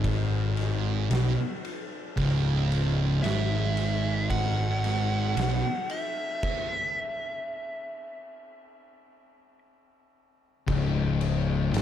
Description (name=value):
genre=stoner and doom metal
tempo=56 BPM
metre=4/4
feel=straight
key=C# minor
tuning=A4 = 441 Hz
part: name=thick fuzz guitar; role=riff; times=0.0-11.8 s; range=C#2 to B2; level=-28 LUFS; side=left 5 dB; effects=distortion
part: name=thick fuzz guitar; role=riff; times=0.0-5.6 s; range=C#2 to B2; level=-29 LUFS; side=right 6 dB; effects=distortion
part: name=fuzz picked electric bass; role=bass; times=0.0-11.8 s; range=C#1 to B1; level=-30 LUFS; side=equal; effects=overdrive, tube saturation
part: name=oversized low-tuned drum kit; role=drums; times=0.0-11.8 s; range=crash cymbal, kick drum, ride cymbal, snare drum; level=-34 LUFS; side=equal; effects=none
part: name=fuzz lead guitar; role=melody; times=3.2-9.6 s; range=E5 to F#5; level=-32 LUFS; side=equal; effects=wah, distortion, tape echo
room=light reverb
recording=none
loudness=-25 LUFS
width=side -10 dB against mid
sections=0.0-10.7 A section; 10.7-11.8 B section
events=stop 6.4-10.7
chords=0.0 C#5